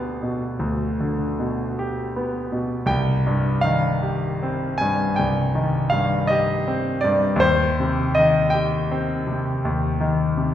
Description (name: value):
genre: classical, romantic nocturne for solo piano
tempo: 53 BPM (dotted quarters)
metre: 12/8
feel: rubato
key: C minor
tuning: A4 = 441 Hz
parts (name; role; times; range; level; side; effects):
- bright concert grand piano; solo; 0.0-10.5 s; C2 to Ab5; -19 LUFS; left 1 dB; none
room: wet recital hall reverb, RT60 1.4 s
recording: heard from further back in the room, lossy compression artefacts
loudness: -19 LUFS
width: side -10 dB against mid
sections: 0.0-10.5 A section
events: none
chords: 0.0 G7/D; 2.9 Cm; 7.4 Cm/Eb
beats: 0.60 1.77 | 2.90 4.04 5.18 6.30 | 7.42 8.55 9.65